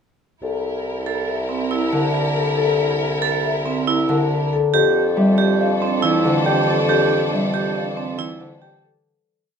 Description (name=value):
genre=classical, minimalist pattern music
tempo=139 BPM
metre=5/4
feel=straight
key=F major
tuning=A4 = 438 Hz
part: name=marimba with medium mallets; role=melody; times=0.4-9.1 s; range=A4 to F5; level=-24 LUFS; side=left 10 dB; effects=none
part: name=rich studio string section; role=sustained chords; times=0.4-8.8 s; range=D4 to Bb4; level=-27 LUFS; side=right 1 dB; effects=none
part: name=mellow bassoon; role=bass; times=0.4-8.9 s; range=C2 to F2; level=-25 LUFS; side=right 2 dB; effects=none
part: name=vibraphone with hard mallets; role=arpeggios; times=1.1-8.9 s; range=C4 to A4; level=-21 LUFS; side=right 5 dB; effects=none
part: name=Celtic harp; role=accompaniment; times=1.9-9.1 s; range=D3 to G3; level=-22 LUFS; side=equal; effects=none
part: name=celesta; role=arpeggios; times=6.5-8.9 s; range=G5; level=-26 LUFS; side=left 10 dB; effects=none
room=moderate large studio reverb, RT60 0.9 s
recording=minimal, uncompressed stereo recording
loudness=-17 LUFS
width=side -6 dB against mid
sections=0.4-9.1 A section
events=fade-out 6.9-9.1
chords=0.4 C13; 4.7 F69